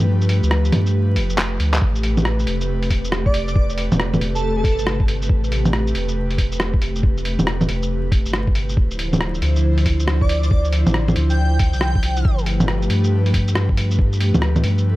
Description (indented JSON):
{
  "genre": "future garage",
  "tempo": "138 BPM",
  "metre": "4/4",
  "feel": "swing 64% on 16ths",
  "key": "A minor",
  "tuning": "A4 = 440 Hz",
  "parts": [
    { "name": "airy breathy pad", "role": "sustained chords", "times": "0.0-15.0 s", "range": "C3 to C5", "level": "-25 LUFS", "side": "equal", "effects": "chorus, vintage 12-bit sampler grit, sidechain pumping" },
    { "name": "warm sub bass", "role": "bass", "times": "0.0-15.0 s", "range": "D1 to G2", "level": "-20 LUFS", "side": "equal", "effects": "tube saturation, sidechain pumping" },
    { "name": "lo-fi sampler-style drum kit", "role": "drums", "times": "0.0-14.8 s", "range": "bongos, handclaps, hi-hat, rim click, shaker", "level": "-22 LUFS", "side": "equal", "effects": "none" },
    { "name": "electronic kick drum", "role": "drums", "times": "1.8-14.1 s", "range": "none", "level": "-18 LUFS", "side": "equal", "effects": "none" },
    { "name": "airy dreamy lead", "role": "melody", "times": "3.3-4.9, 10.2-12.3 s", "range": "A4 to G5", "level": "-28 LUFS", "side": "right 1 dB", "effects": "chorus, analog delay" },
    { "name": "swell", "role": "sound effects", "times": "14.9-15.0 s", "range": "none", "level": "-32 LUFS", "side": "right 5 dB", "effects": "none" }
  ],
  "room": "digital ambience",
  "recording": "dark, warm production, vinyl crackle",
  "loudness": "-16 LUFS",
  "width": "side -18 dB against mid",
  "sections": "0.0-1.8 A section; 1.8-15.0 A section",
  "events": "break 0.1-1.8; drum fill 1.4-1.8",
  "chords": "0.0 G9; 1.8 Am9; 8.8 Dm9; 12.2 G9",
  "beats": "| 0.07 0.51 0.94 1.38 | 1.81 2.25 2.68 3.12 | 3.55 3.99 4.42 4.86 | 5.29 5.72 6.16 6.59 | 7.03 7.46 7.90 8.33 | 8.77 9.20 9.64 10.07 | 10.51 10.94 11.38 11.81 | 12.25 12.68 13.12 13.55 | 13.99 14.42 14.86"
}